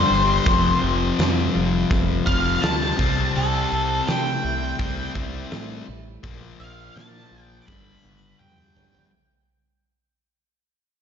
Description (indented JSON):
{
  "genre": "quiet-loud alternative rock",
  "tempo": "83 BPM",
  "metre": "4/4",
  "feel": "straight",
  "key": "unclear",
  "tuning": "A4 = 440 Hz",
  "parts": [
    { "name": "octave-fuzz lead guitar", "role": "melody", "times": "0.0-9.1 s", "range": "A4 to D6", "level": "-24 LUFS", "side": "left 1 dB", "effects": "distortion, slapback echo" },
    { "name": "clean electric guitar", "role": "arpeggios", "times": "0.0-9.1 s", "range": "Bb2 to G4", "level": "-30 LUFS", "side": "right 5 dB", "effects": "wide subtle chorus" },
    { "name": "sludgy distorted guitar", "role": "riff", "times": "0.0-9.1 s", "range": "F2 to C4", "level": "-25 LUFS", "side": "left 6 dB", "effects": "overdrive" },
    { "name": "growling fingered electric bass", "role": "bass", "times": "0.0-9.0 s", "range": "F1 to C3", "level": "-27 LUFS", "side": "equal", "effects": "overdrive" },
    { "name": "huge arena drum kit", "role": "drums", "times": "0.5-9.1 s", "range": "hi-hat, kick drum, snare drum, toms", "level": "-26 LUFS", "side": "right 1 dB", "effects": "none" }
  ],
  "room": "moderate lush hall reverb, RT60 1.9 s, small room reverb",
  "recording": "big arena sound, nothing above 7.5 kHz",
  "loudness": "-19 LUFS",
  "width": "side -8 dB against mid",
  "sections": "0.0-9.1 A section",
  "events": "fade-out 0.0-9.1; lead electric guitar solo 0.0-9.1; drum fill 7.7-9.1",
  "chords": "0.5 Fsus2; 3.0 C6; 6.2 Bb; 7.7 G"
}